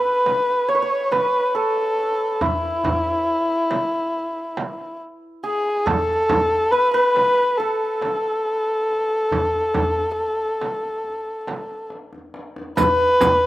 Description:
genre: Persian modal ensemble.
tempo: 70 BPM.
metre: 4/4.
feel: straight.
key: A dastgah mahur.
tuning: A4 = 441 Hz.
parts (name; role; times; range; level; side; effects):
dark kamancheh; melody; 0.0-13.5 s; E4 to C#5; -19 LUFS; left 1 dB; slapback echo.
santur; second line; 0.0-13.5 s; E4 to C#5; -27 LUFS; right 5 dB; slapback echo.
tombak; percussion; 0.0-13.4 s; none; -31 LUFS; equal; none.
frame drum; percussion; 0.3-13.4 s; none; -26 LUFS; right 4 dB; none.
riq; percussion; 12.8-13.4 s; none; -32 LUFS; left 4 dB; none.
room: little or no reverb.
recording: recorded outdoors, with no room sound.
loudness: -18 LUFS.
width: side -16 dB against mid.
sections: 0.0-12.8 A section.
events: drum fill 11.9-12.8.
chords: none.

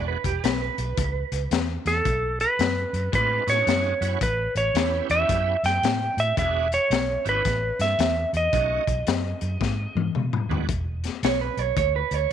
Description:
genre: electric blues shuffle.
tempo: 111 BPM.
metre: 4/4.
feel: swing 64% on 8ths.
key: unclear.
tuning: A4 = 440 Hz.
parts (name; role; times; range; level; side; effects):
clean lap steel guitar; melody; 0.0-10.1 s; A4 to G5; -24 LUFS; right 1 dB; none.
electric guitar through a small old amp; second line; 0.0-1.7, 11.2-12.3 s; G4 to C#5; -26 LUFS; right 15 dB; none.
bright tonewheel organ; accompaniment; 0.0-10.7 s; E2 to G#4; -33 LUFS; right 15 dB; overdrive, chorus vibrato, slow rotary speaker.
vintage muted fingered electric bass; bass; 0.0-12.3 s; E1 to B2; -28 LUFS; right 1 dB; none.
crunchy breakbeat drum kit; drums; 0.2-12.2 s; hi-hat, kick drum, snare drum, toms; -27 LUFS; left 6 dB; none.
room: light reverb.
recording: 1960s-style stereo with parts hard left and right.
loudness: -21 LUFS.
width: side -9 dB against mid.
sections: 0.0-10.7 A section; 10.7-12.3 B section.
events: drum fill 9.6-10.7; clean electric guitar solo 10.7-12.3.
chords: 0.0 E9; 2.1 B9; 4.2 A9; 6.4 E9; 7.4 A5; 8.5 B9; 10.7 E5.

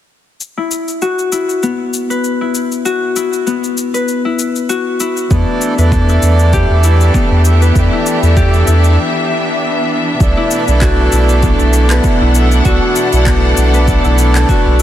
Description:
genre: organic downtempo.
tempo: 98 BPM.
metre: 4/4.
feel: swing 55% on 16ths.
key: unclear.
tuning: A4 = 440 Hz.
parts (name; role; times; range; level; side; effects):
electronic cabasa and handclaps; drums; 0.4-14.8 s; none; -22 LUFS; left 3 dB; overdrive.
Celtic harp; arpeggios; 0.6-14.8 s; B3 to B4; -17 LUFS; left 4 dB; low-pass filter, digital delay.
pedal harmonium; accompaniment; 5.3-14.8 s; E3 to E4; -18 LUFS; right 2 dB; sidechain pumping, digital delay.
clear symphonic string section; sustained chords; 5.3-14.8 s; B2 to F#5; -18 LUFS; equal; sidechain pumping.
warm sub bass; bass; 5.3-14.8 s; B1 to E2; -10 LUFS; equal; none.
electronic kick drum; drums; 5.3-14.6 s; none; -15 LUFS; equal; overdrive.
room: light reverb, studio reverb.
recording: dense, heavily limited modern master.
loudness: -10 LUFS.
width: side -12 dB against mid.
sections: 0.4-10.2 A section; 10.2-14.8 B section.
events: break 9.0-10.2.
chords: 0.4 B5; 5.3 Em7; 10.2 Bm7.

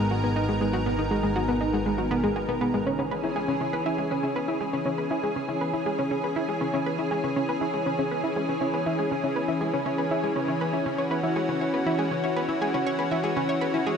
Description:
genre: ambient, sequencer-driven space music.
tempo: 120 BPM.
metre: 4/4.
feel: straight.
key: C# minor.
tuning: A4 = 439 Hz.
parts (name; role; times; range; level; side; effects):
lush unison pad; sustained chords; 0.0-14.0 s; D#3 to A#4; -27 LUFS; equal; chorus.
analog pluck; riff; 0.0-13.9 s; G#3 to C#5; -27 LUFS; equal; chorus, ping-pong delay.
analog drone; bass; 0.0-2.8 s; G#1; -32 LUFS; equal; chorus.
pulsing gated texture; texture; 0.0-2.9 s; D#4 to G#5; -37 LUFS; equal; none.
room: wet echo chamber reverb, RT60 2.5 s.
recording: echo-heavy mix, cassette tape.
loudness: -24 LUFS.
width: side -6 dB against mid.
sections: 0.0-2.9 A section; 2.9-14.0 B section.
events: none.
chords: 0.0 G#m; 2.9 C#m.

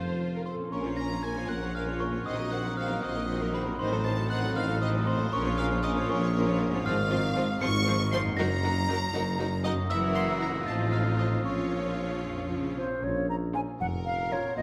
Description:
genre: cinematic, playful, whimsical film cue.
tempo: 78 BPM (dotted quarters).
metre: 6/8.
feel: straight.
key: Bb minor.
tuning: A4 = 440 Hz.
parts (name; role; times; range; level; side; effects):
rich studio violin section; melody; 0.0-14.6 s; F4 to Db6; -39 LUFS; equal; none.
clear studio violin section; second line; 0.0-14.5 s; C4 to Db5; -39 LUFS; equal; none.
rich studio viola section; accompaniment; 0.0-14.5 s; Eb3 to C5; -37 LUFS; equal; none.
concert harp; arpeggios; 0.0-14.6 s; Gb2 to F5; -40 LUFS; equal; none.
dark tuba; bass; 0.0-14.6 s; F1 to Bb1; -36 LUFS; equal; none.
rich studio cello section; bass; 0.0-14.6 s; F2 to F3; -38 LUFS; equal; none.
rich studio double bass section; bass; 0.0-14.6 s; F1 to F2; -37 LUFS; equal; none.
glockenspiel with soft plastic mallets; melody; 0.5-12.2 s; Cb6 to Db7; -37 LUFS; equal; none.
concert flute; second line; 12.8-14.6 s; C5 to Bb5; -33 LUFS; equal; none.
room: moderate concert hall reverb, RT60 1.9 s.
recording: none.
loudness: -29 LUFS.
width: mono.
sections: 0.7-13.0 A section; 13.0-14.6 A section.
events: none.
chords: 0.0 F; 0.7 Bbm; 2.3 Cm7b5/Bb; 3.8 Adim7; 5.3 Bbm; 6.9 Fm/Ab; 8.4 Ebm/Gb; 9.9 Gb7; 10.7 F7/A; 11.5 Bbm.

